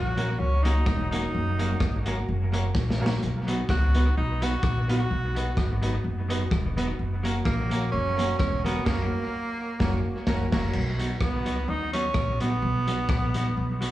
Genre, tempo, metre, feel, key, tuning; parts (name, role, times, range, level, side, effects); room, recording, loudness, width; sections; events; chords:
ska; 128 BPM; 4/4; swing 55% on 8ths; B major; A4 = 440 Hz
clear tenor saxophone; melody; 0.0-13.9 s; A#3 to F#4; -30 LUFS; right 1 dB
upright bass; bass; 0.0-13.9 s; E1 to D#2; -26 LUFS; equal
clean electric guitar; accompaniment; 0.2-13.9 s; F#3 to F#4; -34 LUFS; right 3 dB; dub echo, slapback echo
bright upright piano; stabs; 0.2-10.7 s; A#3 to B4; -35 LUFS; left 2 dB; dub echo, slapback echo
crunchy breakbeat drum kit; drums; 0.2-13.9 s; crash cymbal, hi-hat, kick drum, rim click, snare drum; -29 LUFS; equal; dub echo
studio ambience; live gig heard through the venue's PA, club reverb, small room ambience; -23 LUFS; side -14 dB against mid
0.0-10.7 A section; 10.7-13.9 A section
drum fill 2.8-3.2; band accent 8.9-10.7
0.0 F#; 3.2 B; 7.0 F#; 10.7 B